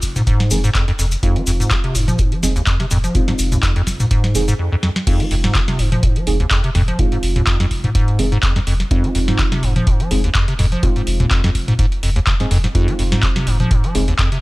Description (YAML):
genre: acid house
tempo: 125 BPM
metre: 4/4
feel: swing 54% on 16ths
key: F minor pentatonic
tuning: A4 = 440 Hz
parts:
  - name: deep mellow chord stab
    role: stabs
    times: 0.0-14.0 s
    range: Ab3 to Ab4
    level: -25 LUFS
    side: right 1 dB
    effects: chorus, phaser, tape echo
  - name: saturated sub bass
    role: bass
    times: 0.0-14.1 s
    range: F1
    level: -20 LUFS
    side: equal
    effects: sidechain pumping
  - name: booming analog drum machine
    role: drums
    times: 0.0-14.4 s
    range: crash cymbal, handclaps, hi-hat, snare drum, toms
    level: -21 LUFS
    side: equal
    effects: small room ambience
  - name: electronic kick drum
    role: drums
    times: 0.0-14.3 s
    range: none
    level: -18 LUFS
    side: equal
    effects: small room ambience
  - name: cabasa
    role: percussion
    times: 0.0-4.6 s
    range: none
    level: -26 LUFS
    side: left 2 dB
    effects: none
  - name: acid bass, square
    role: riff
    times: 0.2-14.4 s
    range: F1 to F3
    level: -19 LUFS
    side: equal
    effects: lush chorus
room: little or no reverb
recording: none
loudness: -14 LUFS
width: side -21 dB against mid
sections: 0.0-5.1 A section; 5.1-14.4 B section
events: break 4.6-5.1; drum fill 4.8; drop 5.1-14.4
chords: 0.0 Fm7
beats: 0.27 0.75 | 1.23 1.71 2.19 2.67 | 3.15 3.63 4.11 4.59 | 5.07 5.55 6.03 6.51 | 6.99 7.47 7.95 8.43 | 8.91 9.39 9.87 10.35 | 10.83 11.31 11.79 12.27 | 12.75 13.23 13.71 14.19